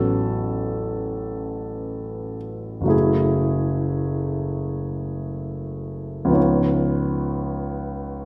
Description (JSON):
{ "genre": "classical, impressionist solo piano", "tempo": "free time", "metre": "none", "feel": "none", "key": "unclear", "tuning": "A4 = 440 Hz", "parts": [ { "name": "warm grand piano", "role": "solo", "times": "0.0-8.2 s", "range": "F#1 to C#5", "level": "-24 LUFS", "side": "equal", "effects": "none" } ], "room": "wet recital hall reverb, RT60 1.4 s", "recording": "dark, warm production", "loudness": "-24 LUFS", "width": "mono", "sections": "0.0-2.9 A section; 2.9-8.2 B section", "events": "none", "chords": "0.0 A69; 2.9 F#m9; 6.4 C#9" }